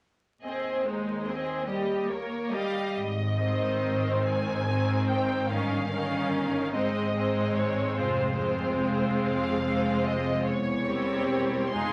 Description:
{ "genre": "classical, slow romantic movement for string orchestra", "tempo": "48 BPM (dotted quarters)", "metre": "6/8", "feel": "uneven beats, rubato", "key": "Ab major", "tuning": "A4 = 442 Hz", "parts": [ { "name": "warm symphonic violin section", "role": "melody", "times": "0.4-11.9 s", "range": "C5 to C6", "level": "-37 LUFS", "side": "equal", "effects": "none" }, { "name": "warm symphonic violin section", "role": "second line", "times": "0.4-11.9 s", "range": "Eb4 to C5", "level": "-38 LUFS", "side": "equal", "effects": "none" }, { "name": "rich symphonic viola section", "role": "accompaniment", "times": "0.4-11.9 s", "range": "Eb3 to Eb4", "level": "-30 LUFS", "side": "equal", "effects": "none" }, { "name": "rich symphonic cello section", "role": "bass", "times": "0.4-11.9 s", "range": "Eb2 to Ab2", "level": "-38 LUFS", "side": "equal", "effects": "none" }, { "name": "warm symphonic double bass section", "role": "bass", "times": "2.9-11.9 s", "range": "E1 to Ab1", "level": "-35 LUFS", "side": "equal", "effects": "none" } ], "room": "wet large studio reverb, RT60 0.9 s", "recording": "vinyl crackle", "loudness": "-28 LUFS", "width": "mono", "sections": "0.4-3.0 A section; 3.0-11.9 B section", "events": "none", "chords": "0.4 Ab/Eb; 1.7 Eb7; 3.0 Ab; 5.5 Eb7/G; 6.7 Ab; 8.0 Fm; 10.4 C7/E", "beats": "| 0.43 1.67 | 2.95 4.26 | 5.50 6.74 | 7.95 9.23 | 10.44 11.72" }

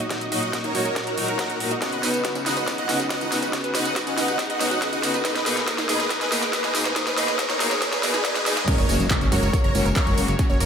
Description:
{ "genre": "uplifting trance", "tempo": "140 BPM", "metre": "4/4", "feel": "straight", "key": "unclear", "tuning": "A4 = 440 Hz", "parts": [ { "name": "rich studio string section", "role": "sustained chords", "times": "0.0-10.7 s", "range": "Bb2 to Ab4", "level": "-27 LUFS", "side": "left 1 dB", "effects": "sidechain pumping" }, { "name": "wide unison pluck", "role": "arpeggios", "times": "0.0-10.6 s", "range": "C#4 to Bb5", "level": "-29 LUFS", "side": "right 1 dB", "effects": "sidechain pumping, ping-pong delay" }, { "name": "big-room dance drum kit", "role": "drums", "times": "0.0-10.7 s", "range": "congas, crash cymbal, handclaps, hi-hat, snare drum, tambourine", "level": "-26 LUFS", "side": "equal", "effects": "overdrive, high-pass filter on snare, sidechain pumping on hats, high-pass filter on hats, sidechain pumping on perc, high-pass filter on perc, sidechain pumping on cymbals, high-pass filter on cymbals" }, { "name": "riser and impact", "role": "sound effects", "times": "0.2-10.4 s", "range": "none", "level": "-32 LUFS", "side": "equal", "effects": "none" }, { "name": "electronic kick drum", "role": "drums", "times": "0.1-10.5 s", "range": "none", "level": "-24 LUFS", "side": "equal", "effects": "overdrive, high-pass filter on kick" }, { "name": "big supersaw lead", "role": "melody", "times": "0.3-10.7 s", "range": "Gb4 to F#5", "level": "-27 LUFS", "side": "right 1 dB", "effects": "wide subtle chorus, sidechain pumping, ping-pong delay" }, { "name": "fat analog bass", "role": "bass", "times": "8.8-10.7 s", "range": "Gb1", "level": "-24 LUFS", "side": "equal", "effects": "sidechain pumping" } ], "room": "wet lush hall reverb, RT60 2.0 s, digital ambience", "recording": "dreamy mix soaked in reverb, high-pass filter", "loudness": "-20 LUFS", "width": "side -7 dB against mid", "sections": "0.0-8.7 A section; 8.7-10.7 B section", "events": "build-up 0.0-8.7; drum fill 0.0-8.7; drop 8.7-10.7; impact 8.7-10.4", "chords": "0.0 Ebm; 1.8 Badd9; 5.2 Abmadd9; 8.7 Gb", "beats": "| 0.10 0.53 0.96 1.39 | 1.82 2.25 2.68 3.10 | 3.53 3.96 4.39 4.82 | 5.25 5.68 6.11 6.53 | 6.96 7.39 7.82 8.25 | 8.68 9.11 9.53 9.96 | 10.39" }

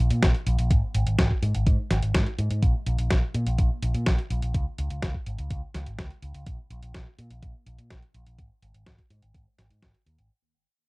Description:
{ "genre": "italo disco", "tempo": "125 BPM", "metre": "4/4", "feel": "straight", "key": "unclear", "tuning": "A4 = 445 Hz", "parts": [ { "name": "picked electric bass with an envelope filter", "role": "bass", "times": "0.0-10.3 s", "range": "Ab1 to Bb2", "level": "-26 LUFS", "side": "equal", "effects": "none" }, { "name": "detuned 8-bit digital drum machine", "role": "drums", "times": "0.1-10.3 s", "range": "hi-hat, snare drum", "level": "-28 LUFS", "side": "equal", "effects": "none" }, { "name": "electronic kick drum", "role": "drums", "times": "0.2-9.9 s", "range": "none", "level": "-25 LUFS", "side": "equal", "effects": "none" } ], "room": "little or no reverb", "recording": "dry, close 1970s-style studio recording", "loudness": "-23 LUFS", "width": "side -27 dB against mid", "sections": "0.0-10.3 A section", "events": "fade-out 0.0-10.3", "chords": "none", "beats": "0.22 | 0.70 1.18 1.66 2.14 | 2.62 3.10 3.58 4.06 | 4.54 5.02 5.50 5.98 | 6.46 6.94 7.42 7.90 | 8.38 8.86 9.34 9.82" }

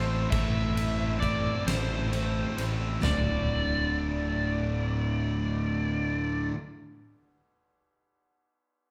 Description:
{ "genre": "post-rock", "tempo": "44 BPM (dotted quarters)", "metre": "6/8", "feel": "straight", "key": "unclear", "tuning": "A4 = 439 Hz", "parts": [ { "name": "overdriven slide guitar", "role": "melody", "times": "0.0-6.5 s", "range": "C5 to E5", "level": "-36 LUFS", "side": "equal", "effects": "none" }, { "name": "distorted electric guitar", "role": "riff", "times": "0.0-6.6 s", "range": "D2 to A4", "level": "-35 LUFS", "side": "equal", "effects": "distortion" }, { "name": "fuzz guitar", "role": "riff", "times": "0.0-6.6 s", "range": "D2 to A4", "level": "-38 LUFS", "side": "equal", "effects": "distortion" }, { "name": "fuzz picked electric bass", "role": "bass", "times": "0.0-6.5 s", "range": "D1 to A1", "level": "-33 LUFS", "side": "equal", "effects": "overdrive" }, { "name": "huge arena drum kit", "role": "drums", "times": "0.3-3.2 s", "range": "kick drum, ride cymbal, snare drum, toms", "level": "-34 LUFS", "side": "equal", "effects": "none" } ], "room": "wet large studio reverb, RT60 1.2 s", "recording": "band playing live in one room", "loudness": "-29 LUFS", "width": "mono", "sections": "0.0-3.0 A section; 3.0-5.7 B section", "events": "none", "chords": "0.0 Am; 3.0 D", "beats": "| 0.32 1.67 | 3.02 4.38" }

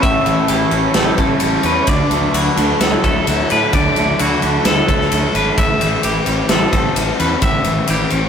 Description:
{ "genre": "rock, shoegaze and dream pop", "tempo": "130 BPM", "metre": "4/4", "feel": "straight", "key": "D major", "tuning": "A4 = 438 Hz", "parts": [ { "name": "twangy electric guitar", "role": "arpeggios", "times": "0.0-8.3 s", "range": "F#4 to E5", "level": "-20 LUFS", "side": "left 2 dB", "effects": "none" }, { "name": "overdriven electric guitar", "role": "riff", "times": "0.0-8.3 s", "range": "A2 to E4", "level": "-19 LUFS", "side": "left 3 dB", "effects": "none" }, { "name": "raw garage guitar", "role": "riff", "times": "0.0-8.3 s", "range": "A2 to E4", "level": "-21 LUFS", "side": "right 3 dB", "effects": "overdrive" }, { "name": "fuzz fingered electric bass", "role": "bass", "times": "0.0-8.3 s", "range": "G#1 to A2", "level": "-22 LUFS", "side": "right 1 dB", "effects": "overdrive" }, { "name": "big rock drum kit", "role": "drums", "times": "0.0-8.2 s", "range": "kick drum, ride cymbal, snare drum", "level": "-18 LUFS", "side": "equal", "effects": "none" } ], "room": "wet stone room reverb, RT60 1.4 s", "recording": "rough rehearsal-room recording", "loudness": "-13 LUFS", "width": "side -7 dB against mid", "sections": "0.0-8.3 A section", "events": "none", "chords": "0.0 A7; 1.9 Dadd9; 5.6 A7", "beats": "| 0.03 0.49 0.95 1.42 | 1.88 2.34 2.80 3.27 | 3.73 4.19 4.65 5.12 | 5.58 6.04 6.50 6.96 | 7.42 7.89" }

